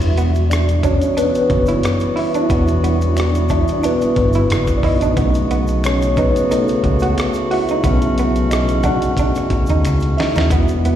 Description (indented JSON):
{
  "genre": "R&B, neo-soul",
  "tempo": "90 BPM",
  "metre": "4/4",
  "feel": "swing 54% on 16ths",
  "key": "unclear",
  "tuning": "A4 = 440 Hz",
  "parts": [
    { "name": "mellow tine electric piano", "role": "accompaniment", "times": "0.0-11.0 s", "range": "G3 to F#5", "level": "-19 LUFS", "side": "equal", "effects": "medium stereo tremolo, slapback echo" },
    { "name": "mellow woodwind section", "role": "sustained chords", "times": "0.0-11.0 s", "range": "C#3 to F#4", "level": "-23 LUFS", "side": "left 1 dB", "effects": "none" },
    { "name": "fretless electric bass", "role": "bass", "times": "0.0-11.0 s", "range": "E1 to D#2", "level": "-17 LUFS", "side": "equal", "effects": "none" },
    { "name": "dusty soul sampler-style drum kit", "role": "drums", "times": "0.0-11.0 s", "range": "hi-hat, kick drum, rim click, snare drum", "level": "-22 LUFS", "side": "equal", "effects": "none" },
    { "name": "tube shaker and finger snaps", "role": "percussion", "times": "0.0-11.0 s", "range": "none", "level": "-37 LUFS", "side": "left 1 dB", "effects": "slapback echo" },
    { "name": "electric guitar through a small old amp", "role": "second line", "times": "0.2-11.0 s", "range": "B3 to F#4", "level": "-23 LUFS", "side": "right 5 dB", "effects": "slapback echo" }
  ],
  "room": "moderate club ambience, RT60 0.5 s",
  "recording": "live gig heard through the venue's PA, recital hall reverb",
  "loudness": "-14 LUFS",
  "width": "side -10 dB against mid",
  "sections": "0.0-11.0 A section",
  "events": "tine electric piano solo 0.0-11.0; drum fill 9.8-10.5",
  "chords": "0.0 Em9; 5.2 B9"
}